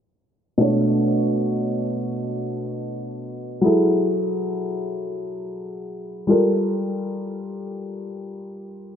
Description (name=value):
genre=R&B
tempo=free time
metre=none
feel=none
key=B minor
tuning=A4 = 440 Hz
part: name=felt-muted upright piano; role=solo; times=0.6-9.0 s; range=B2 to C#5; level=-21 LUFS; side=equal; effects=none
room=light reverb, small room ambience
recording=low-pass filter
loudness=-20 LUFS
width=side -8 dB against mid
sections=0.6-9.0 A section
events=filter sweep 0.6-9.0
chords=0.6 Bm9; 3.6 F#m9; 6.3 Gm9